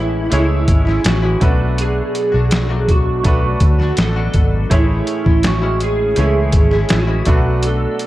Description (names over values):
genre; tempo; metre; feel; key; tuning
indie pop, bedroom pop; 82 BPM; 4/4; straight; A major; A4 = 440 Hz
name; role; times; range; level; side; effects
electric slide guitar; melody; 0.0-8.1 s; E4 to A4; -20 LUFS; right 2 dB; ensemble chorus, slapback echo
bright upright piano; accompaniment; 0.0-8.1 s; A3 to C#5; -25 LUFS; right 3 dB; cassette tape
direct-recorded clean electric guitar; accompaniment; 0.0-8.1 s; A2 to F#4; -25 LUFS; left 4 dB; lush chorus, vibrato effect
vintage muted fingered electric bass; bass; 0.0-7.9 s; G#1 to D2; -17 LUFS; equal; none
trip hop sampler-style drum kit; drums; 0.3-8.1 s; hi-hat, kick drum, snare drum; -16 LUFS; equal; none
room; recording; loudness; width
digital ambience; dark, warm production; -13 LUFS; side -15 dB against mid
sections
0.0-8.1 A section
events
none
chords
0.0 Amaj7; 1.4 Bm7; 4.7 Amaj7; 7.3 Bm7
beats
0.32 1.05 | 1.78 2.52 3.25 3.98 | 4.71 5.44 6.17 6.91 | 7.64